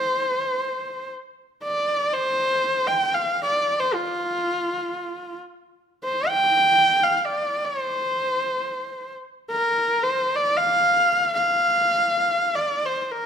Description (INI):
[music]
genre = mongolian traditional, Mongolian folk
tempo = free time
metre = none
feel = none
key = F zhi mode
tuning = A4 = 440 Hz
[part]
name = clear horsehead fiddle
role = solo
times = 0.0-13.3 s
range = F4 to G5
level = -20 LUFS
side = equal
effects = none
[sound]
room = moderate recital hall reverb, RT60 1.4 s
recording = none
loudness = -20 LUFS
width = side -7 dB against mid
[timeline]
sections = 0.0-5.6 A section; 5.6-13.3 A section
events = none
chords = none